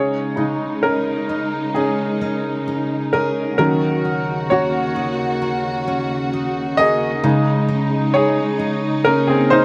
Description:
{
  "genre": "pop ballad",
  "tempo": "66 BPM",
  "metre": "4/4",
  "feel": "straight",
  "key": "unclear",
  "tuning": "A4 = 440 Hz",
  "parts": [
    { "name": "clear concert grand piano", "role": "accompaniment", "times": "0.0-9.6 s", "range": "Db3 to Eb5", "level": "-21 LUFS", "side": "equal", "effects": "slapback echo" },
    { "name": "warm studio string section", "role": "sustained chords", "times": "0.0-9.6 s", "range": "Eb2 to Gb4", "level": "-25 LUFS", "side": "equal", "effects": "none" },
    { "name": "picked steel-string acoustic guitar", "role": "arpeggios", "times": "0.0-9.6 s", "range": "Db3 to Bb4", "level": "-27 LUFS", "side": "equal", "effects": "none" }
  ],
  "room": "little or no reverb",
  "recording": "recorded outdoors, with no room sound",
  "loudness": "-19 LUFS",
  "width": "mono",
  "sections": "0.0-9.6 A section",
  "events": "grand piano solo 0.0-9.6",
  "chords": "0.0 Dbsus2; 3.6 Ebm7; 7.2 Dbsus2"
}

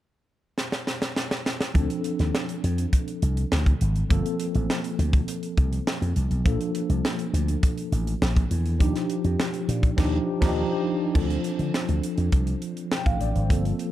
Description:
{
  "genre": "polished 1980s jazz-funk pop",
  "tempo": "102 BPM",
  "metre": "4/4",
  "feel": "straight",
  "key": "D phrygian",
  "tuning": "A4 = 440 Hz",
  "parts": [
    { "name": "crisp fusion drum kit", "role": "drums", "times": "0.6-13.9 s", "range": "crash cymbal, hi-hat, kick drum, snare drum", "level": "-25 LUFS", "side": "equal", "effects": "none" },
    { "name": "mellow tine electric piano", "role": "accompaniment", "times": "1.7-13.9 s", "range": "F3 to G5", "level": "-28 LUFS", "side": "equal", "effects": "medium stereo tremolo, analog chorus" },
    { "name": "slap bass with an envelope filter", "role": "bass", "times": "1.8-13.7 s", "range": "G1 to D3", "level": "-24 LUFS", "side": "equal", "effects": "none" }
  ],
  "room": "light reverb, small room ambience",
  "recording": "dark, warm production",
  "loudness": "-22 LUFS",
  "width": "side -13 dB against mid",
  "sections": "0.0-1.8 A section; 1.8-11.2 B section; 11.2-13.9 C section",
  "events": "drum fill 0.6-1.8; band accent 10.0-11.2",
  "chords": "0.0 N.C.; 1.8 Dm7; 4.1 Gm11 (rootless); 6.5 Bbmaj7; 8.8 Ebmaj9; 11.2 Dm7"
}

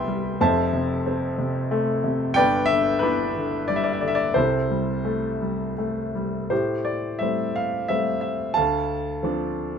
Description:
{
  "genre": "classical, lyrical solo piano",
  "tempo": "77-93 BPM",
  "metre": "3/4",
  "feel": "rubato",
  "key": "C major, A minor from 6.5 s",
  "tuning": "A4 = 440 Hz",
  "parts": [
    { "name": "warm grand piano", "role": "solo", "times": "0.0-9.8 s", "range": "F1 to C6", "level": "-21 LUFS", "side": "left 1 dB", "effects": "none" }
  ],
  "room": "moderate studio reverb, RT60 0.6 s",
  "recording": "none",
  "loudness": "-21 LUFS",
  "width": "side -7 dB against mid",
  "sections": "0.0-6.5 A section; 6.5-9.8 B section",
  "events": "none",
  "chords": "0.4 Fmaj7; 2.4 Em7/G; 4.4 C6; 6.5 Am7; 8.6 Dm7"
}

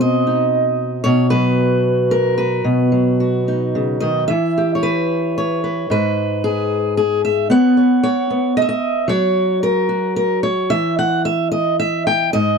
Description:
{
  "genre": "folk, solo fingerstyle acoustic guitar",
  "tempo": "112 BPM",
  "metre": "3/4",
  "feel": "rubato",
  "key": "B major",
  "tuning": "A4 = 442 Hz",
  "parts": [
    { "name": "fingerpicked steel-string acoustic guitar", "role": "solo", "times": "0.0-12.6 s", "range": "G#2 to G5", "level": "-15 LUFS", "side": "equal", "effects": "none" }
  ],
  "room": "light reverb",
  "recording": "dry, close 1970s-style studio recording",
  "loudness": "-15 LUFS",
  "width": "side -5 dB against mid",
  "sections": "0.0-4.3 A section; 4.3-12.6 B section",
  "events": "none",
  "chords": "0.0 Cmmaj7/B; 1.1 B5; 2.6 Badd9; 4.3 Em; 5.9 N.C.; 7.5 Bsus2; 9.1 N.C."
}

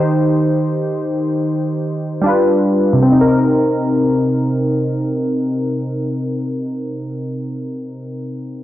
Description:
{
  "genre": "hip hop",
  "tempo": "free time",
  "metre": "none",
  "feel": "none",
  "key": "C minor",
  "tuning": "A4 = 439 Hz",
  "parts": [
    { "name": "warm analog keys", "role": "accompaniment", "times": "0.0-8.6 s", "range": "C3 to C5", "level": "-15 LUFS", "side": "equal", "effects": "chorus" }
  ],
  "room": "light reverb",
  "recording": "dry, gritty hardware recording, low-pass filter",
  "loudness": "-15 LUFS",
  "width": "side -14 dB against mid",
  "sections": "0.0-3.1 A section; 3.1-6.3 B section",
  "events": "filter sweep 0.0-3.1",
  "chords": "0.0 Eb6; 2.3 G7; 3.1 Cm7"
}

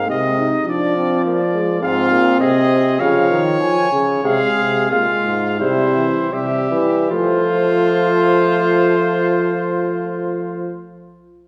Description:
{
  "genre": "classical, imitative canzona for brass ensemble",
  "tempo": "75-105 BPM",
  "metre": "4/4",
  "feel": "straight",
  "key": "unclear",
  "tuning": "A4 = 441 Hz",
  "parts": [
    { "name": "warm trumpet", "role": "melody", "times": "0.0-10.8 s", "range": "C5 to Ab5", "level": "-23 LUFS", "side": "equal", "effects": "none" },
    { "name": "warm trombone", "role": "accompaniment", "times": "0.0-10.8 s", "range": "E3 to Eb4", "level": "-22 LUFS", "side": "equal", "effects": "none" },
    { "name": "clear bass trombone", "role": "bass", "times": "0.0-10.8 s", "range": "Ab2 to F3", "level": "-22 LUFS", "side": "equal", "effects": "none" },
    { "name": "clear trumpet", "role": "second line", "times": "1.8-10.7 s", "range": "E4 to Db5", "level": "-24 LUFS", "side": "equal", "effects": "none" }
  ],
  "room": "wet recital hall reverb, RT60 1.7 s",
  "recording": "heard from further back in the room, faint mains hum",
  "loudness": "-17 LUFS",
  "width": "mono",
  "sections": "0.0-7.1 A section; 7.1-10.3 B section",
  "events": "slowing down 0.7-7.1",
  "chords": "0.0 Fm/Ab (rootless); 0.7 Ddim/F; 1.8 Fm/Ab; 3.0 Db; 4.2 Fm/C; 5.6 C; 7.1 F"
}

